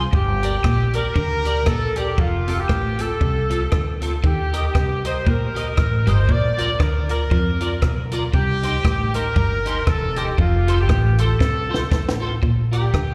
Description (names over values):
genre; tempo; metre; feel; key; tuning
ska; 117 BPM; 4/4; swing 57% on 8ths; Bb major; A4 = 439 Hz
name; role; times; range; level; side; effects
clean electric guitar; accompaniment; 0.0-12.8 s; C4 to Eb5; -31 LUFS; equal; ensemble chorus, slapback echo
upright bass; bass; 0.0-13.1 s; E1 to F2; -24 LUFS; equal; none
clear horn section; melody; 0.1-13.1 s; F4 to D5; -27 LUFS; equal; tape echo
electric guitar at the edge of break-up; riff; 0.1-13.1 s; E2 to F3; -30 LUFS; equal; phaser, slapback echo
compact cocktail drum kit; drums; 0.1-13.1 s; hi-hat, kick drum, rim click, snare drum; -23 LUFS; equal; none
room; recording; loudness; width
light reverb, studio ambience; live gig heard through the venue's PA, recital hall reverb; -20 LUFS; mono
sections
0.0-12.4 A section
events
drum fill 11.4-12.4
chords
0.1 Gm; 2.2 F; 4.2 Eb; 6.3 Bb; 8.3 Cm; 10.4 F; 12.4 Bb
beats
| 0.13 0.65 1.16 1.67 | 2.18 2.70 3.21 3.72 | 4.24 4.75 5.26 5.77 | 6.29 6.80 7.31 7.82 | 8.34 8.85 9.36 9.87 | 10.38 10.89 11.41 11.92 | 12.43 12.94